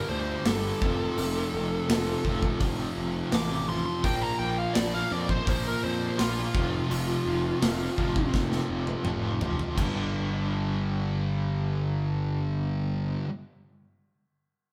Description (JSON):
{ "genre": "quiet-loud alternative rock", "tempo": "84 BPM", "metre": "4/4", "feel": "straight", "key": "G minor", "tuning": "A4 = 439 Hz", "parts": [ { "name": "bluesy overdriven lead guitar", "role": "melody", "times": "0.0-8.3 s", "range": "F4 to D6", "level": "-34 LUFS", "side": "equal", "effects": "distortion" }, { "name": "biting overdriven guitar", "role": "riff", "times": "0.0-13.3 s", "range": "F2 to Bb3", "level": "-37 LUFS", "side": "equal", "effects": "tremolo" }, { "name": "fuzz guitar", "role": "riff", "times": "0.0-13.3 s", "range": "F2 to Bb3", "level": "-34 LUFS", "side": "equal", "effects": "distortion" }, { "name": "sludgy distorted guitar", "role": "riff", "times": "0.0-13.3 s", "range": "F2 to Bb3", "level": "-40 LUFS", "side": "equal", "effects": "overdrive" }, { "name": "fuzz picked electric bass", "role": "bass", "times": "0.1-13.2 s", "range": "F1 to F2", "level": "-35 LUFS", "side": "equal", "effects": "overdrive" }, { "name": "big rock drum kit", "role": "drums", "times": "0.5-9.9 s", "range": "crash cymbal, hi-hat, kick drum, snare drum, toms", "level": "-33 LUFS", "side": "equal", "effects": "none" } ], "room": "moderate large studio reverb, RT60 1.4 s", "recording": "band playing live in one room", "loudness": "-28 LUFS", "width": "mono", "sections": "0.0-9.8 A section; 9.8-12.6 B section", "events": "lead electric guitar solo 0.0-9.8; drum fill 8.3-9.8", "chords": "0.0 G5; 0.8 F; 4.0 Bb5; 6.5 F5; 9.8 G5" }